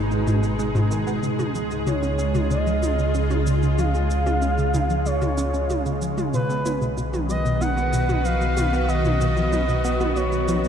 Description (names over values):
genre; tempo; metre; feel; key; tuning
ambient, sequencer-driven space music; 94 BPM; 4/4; straight; unclear; A4 = 444 Hz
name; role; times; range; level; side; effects
expressive portamento lead; melody; 0.0-10.7 s; B4 to F#5; -27 LUFS; equal; chorus, tape echo
evolving wavetable pad; sustained chords; 0.0-10.7 s; B2 to B4; -25 LUFS; right 1 dB; ensemble chorus, built-in reverb
analog pluck; riff; 0.0-10.7 s; G#2 to C#4; -26 LUFS; left 1 dB; chorus, tape echo
warm sub bass; bass; 0.0-10.7 s; G#1 to C#2; -25 LUFS; equal; none
electronic cabasa and toms; percussion; 0.1-10.7 s; none; -31 LUFS; right 1 dB; tape echo
room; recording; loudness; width
moderate huge ambient reverb, RT60 7.3 s; in a vast, echoing space; -20 LUFS; side -8 dB against mid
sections
0.0-1.2 A section; 1.2-10.7 B section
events
filter sweep on synth arpeggio sound 1.2-10.7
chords
0.0 G#m; 1.2 C#; 6.3 B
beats
0.59 | 1.23 1.87 2.51 3.15 | 3.78 4.42 5.06 5.70 | 6.34 6.97 7.61 8.25 | 8.89 9.53 10.17